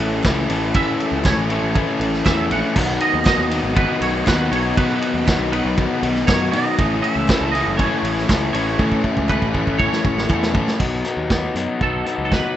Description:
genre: indie rock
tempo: 119 BPM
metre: 4/4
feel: straight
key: B mixolydian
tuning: A4 = 440 Hz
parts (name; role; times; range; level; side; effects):
- twangy electric guitar; melody; 0.0-12.6 s; A4 to F#5; -24 LUFS; right 4 dB; ensemble chorus
- biting overdriven guitar; riff; 0.0-10.8 s; D#3 to A4; -29 LUFS; right 13 dB; ensemble chorus, digital delay
- crunchy overdriven guitar; riff; 0.0-12.6 s; A2 to E4; -21 LUFS; left 4 dB; none
- fuzz picked electric bass; bass; 0.0-12.4 s; F#1 to B2; -25 LUFS; right 1 dB; overdrive
- vintage drum kit; drums; 0.2-12.4 s; crash cymbal, hi-hat, kick drum, ride cymbal, snare drum; -21 LUFS; right 1 dB; none
- group handclap; percussion; 0.2-10.4 s; none; -37 LUFS; right 7 dB; none
room: light reverb, small room reverb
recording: rough home demo mix, nothing above 8.0 kHz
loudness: -16 LUFS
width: side -11 dB against mid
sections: 0.0-10.8 A section; 10.8-12.6 B section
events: drum fill 8.8-10.8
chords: 0.0 A; 2.8 B; 6.8 A; 10.8 Badd9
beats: 0.25 | 0.75 1.25 1.76 2.26 | 2.76 3.27 3.77 4.27 | 4.77 5.28 5.78 6.28 | 6.78 7.29 7.79 8.29 | 8.79 9.29 9.80 10.30 | 10.81 11.31 11.82 12.32

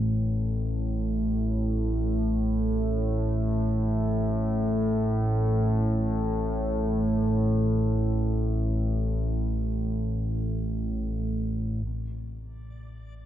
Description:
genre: dark ambient drone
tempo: free time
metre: none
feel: none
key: A minor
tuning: A4 = 439 Hz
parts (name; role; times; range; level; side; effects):
- dark grand piano; arpeggios; 0.0-13.3 s; C3 to D4; -56 LUFS; left 5 dB; none
- analog drone; drone; 0.0-13.3 s; A1 to A2; -25 LUFS; equal; chorus
- backwards swelling texture; texture; 12.5-13.3 s; D5; -59 LUFS; left 1 dB; built-in reverb
room: moderate plate reverb, RT60 3.4 s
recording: echo-heavy mix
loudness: -24 LUFS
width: side -11 dB against mid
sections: 0.0-11.9 A section; 11.9-13.3 B section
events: filter sweep on synth drone 11.9-13.3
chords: 0.0 Asus4; 11.9 Am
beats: free time

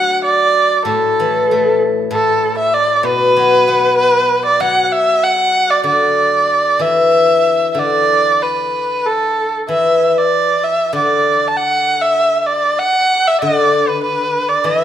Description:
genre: chinese traditional, Chinese chamber ensemble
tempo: 96 BPM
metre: 4/4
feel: rubato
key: D gong mode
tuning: A4 = 440 Hz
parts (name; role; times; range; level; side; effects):
- rich erhu; melody; 0.0-14.8 s; A4 to A5; -13 LUFS; right 1 dB; none
- steel-string zither; accompaniment; 0.0-14.8 s; A2 to D4; -18 LUFS; left 3 dB; none
room: moderate recital hall reverb, RT60 1.6 s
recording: minimal, uncompressed stereo recording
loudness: -12 LUFS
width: side -10 dB against mid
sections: 0.0-14.8 A section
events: none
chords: none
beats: 0.23 0.86 1.49 | 2.11 2.73 3.35 3.98 | 4.60 5.22 5.85 6.49 | 7.14 7.78 8.42 9.06 | 9.69 10.32 10.94 11.55 | 12.18 12.79 13.42 14.04 | 14.66

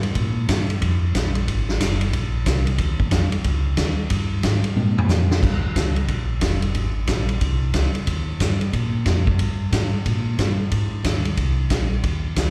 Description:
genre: soul jazz organ trio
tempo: 182 BPM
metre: 4/4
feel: swing 63% on 8ths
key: Eb mixolydian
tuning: A4 = 440 Hz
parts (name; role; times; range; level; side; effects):
- mellow tonewheel organ; bass; 0.0-12.5 s; F1 to Bb2; -24 LUFS; equal; slow rotary speaker
- swinging big-band drum kit; drums; 0.0-12.5 s; crash cymbal, hi-hat, kick drum, ride cymbal, snare drum, toms; -25 LUFS; equal; none
room: light reverb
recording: live gig heard through the venue's PA, recital hall reverb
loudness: -21 LUFS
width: mono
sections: 0.0-5.4 A section; 5.4-12.5 B section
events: drum fill 4.8-5.4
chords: none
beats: | 0.15 0.48 0.81 1.14 | 1.47 1.80 2.13 2.46 | 2.79 3.12 3.45 3.78 | 4.11 4.44 4.77 5.10 | 5.43 5.76 6.09 6.42 | 6.75 7.08 7.42 7.75 | 8.08 8.41 8.74 9.07 | 9.40 9.73 10.06 10.39 | 10.72 11.05 11.38 11.71 | 12.04 12.37

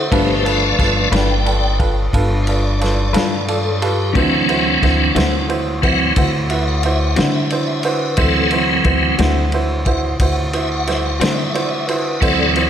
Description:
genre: slow blues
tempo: 60 BPM (dotted quarters)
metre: 12/8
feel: straight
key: D mixolydian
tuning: A4 = 438 Hz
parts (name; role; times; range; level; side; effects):
- clear upright piano; accompaniment; 0.0-12.7 s; E4 to D5; -21 LUFS; right 3 dB; none
- tonewheel organ; sustained chords; 0.0-12.7 s; E3 to G5; -19 LUFS; equal; slow rotary speaker, chorus vibrato
- upright bass; bass; 0.0-12.7 s; G1 to D3; -20 LUFS; equal; none
- electric guitar through a small old amp; accompaniment; 0.1-11.4 s; D3 to B4; -25 LUFS; left 5 dB; tremolo
- vintage drum kit; drums; 0.1-12.7 s; kick drum, ride cymbal, snare drum; -21 LUFS; equal; none
room: moderate concert hall reverb, RT60 2.2 s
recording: big arena sound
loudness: -14 LUFS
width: side -9 dB against mid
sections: 0.0-12.7 A section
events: tonewheel organ solo 0.0-12.7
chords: 0.1 G7; 4.2 D7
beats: | 0.11 1.12 2.13 3.15 | 4.15 5.16 6.17 7.18 | 8.19 9.20 10.20 11.21 | 12.22

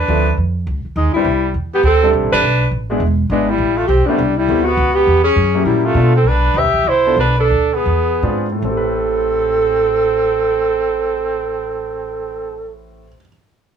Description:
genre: jazz, small-group swing and bop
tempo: 143-205 BPM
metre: 4/4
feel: swing 62% on 8ths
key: A minor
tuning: A4 = 441 Hz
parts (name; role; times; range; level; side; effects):
- dark alto saxophone; melody; 0.0-12.8 s; D4 to E5; -16 LUFS; equal; none
- clear trumpet; second line; 0.0-12.8 s; G3 to G4; -21 LUFS; right 6 dB; none
- upright bass; bass; 0.0-13.1 s; E1 to B2; -18 LUFS; equal; none
- warm concert grand piano; accompaniment; 0.1-13.3 s; A2 to B4; -21 LUFS; right 1 dB; none
room: light reverb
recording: none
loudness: -13 LUFS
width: side -7 dB against mid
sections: 0.0-6.0 A section; 6.0-8.6 B section; 8.6-12.0 C section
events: slowing down 6.0-8.6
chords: 0.1 Dm7; 0.7 C#sus2; 1.3 C69; 2.4 Asus24; 3.0 E7; 3.6 Am7; 4.8 C#m7b5; 5.4 F#7b9; 6.0 Bm7b5; 6.5 Dm11; 7.2 Bm7; 7.9 E7b9b13; 8.6 Am7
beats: | 0.09 0.38 0.67 0.97 | 1.26 1.55 1.84 2.14 | 2.43 2.73 3.02 3.31 | 3.60 3.90 4.19 4.49 | 4.78 5.07 5.37 5.66 | 5.95 6.25 6.55 6.86 | 7.17 7.51 7.86 8.23 | 8.64 9.06 9.47 9.89 | 10.31 10.73 11.15 11.57

